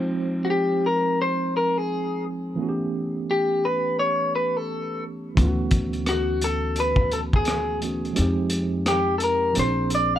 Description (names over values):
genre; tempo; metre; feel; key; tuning
R&B, neo-soul; 86 BPM; 4/4; swing 62% on 16ths; unclear; A4 = 445 Hz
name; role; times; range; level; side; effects
barky tine electric piano; accompaniment; 0.0-10.2 s; E3 to G5; -27 LUFS; right 2 dB; medium stereo tremolo
electric guitar through a small old amp; melody; 0.4-10.2 s; Gb4 to F5; -23 LUFS; left 2 dB; none
upright bass; bass; 5.4-10.2 s; Bb1 to F2; -28 LUFS; equal; none
crunchy breakbeat drum kit; drums; 5.4-10.1 s; hi-hat, kick drum, rim click; -24 LUFS; equal; none
room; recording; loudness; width
light reverb; dark, warm production; -21 LUFS; side -11 dB against mid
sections
0.0-10.2 A section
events
kick muted 8.2-10.2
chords
0.0 Fm9; 2.6 A7; 5.4 Dmaj13; 8.2 Fm7; 9.6 Bb9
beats
0.48 1.18 1.88 | 2.58 3.27 3.97 4.67 | 5.37 6.06 6.76 7.46 | 8.16 8.86 9.55